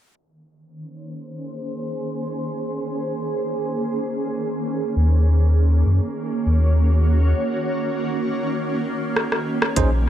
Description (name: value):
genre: ambient dub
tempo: free time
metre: none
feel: none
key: Bb minor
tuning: A4 = 440 Hz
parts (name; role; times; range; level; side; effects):
- granular cloud pad; sustained chords; 0.8-10.1 s; Eb3 to Db5; -24 LUFS; right 1 dB; built-in reverb, vintage 12-bit sampler grit
- warm sub bass; bass; 5.0-10.1 s; Bb1 to Gb2; -16 LUFS; equal; tube saturation
- organic electronic drum kit; drums; 9.2-9.9 s; hi-hat, rim click; -23 LUFS; equal; dub echo
- tine electric piano; stabs; 9.8-9.9 s; Db4 to C5; -23 LUFS; right 6 dB; slow stereo tremolo, dub echo
- electronic kick drum; drums; 9.8-9.9 s; none; -21 LUFS; equal; none
room: light reverb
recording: low-pass filter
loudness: -19 LUFS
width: side -11 dB against mid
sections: 0.2-9.8 A section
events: filter sweep on ambient pad 0.2-9.8; filter sweep 0.2-9.8; break 7.4-9.8; drum fill 9.2-9.8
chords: 0.2 Bbm11; 5.0 Ebm7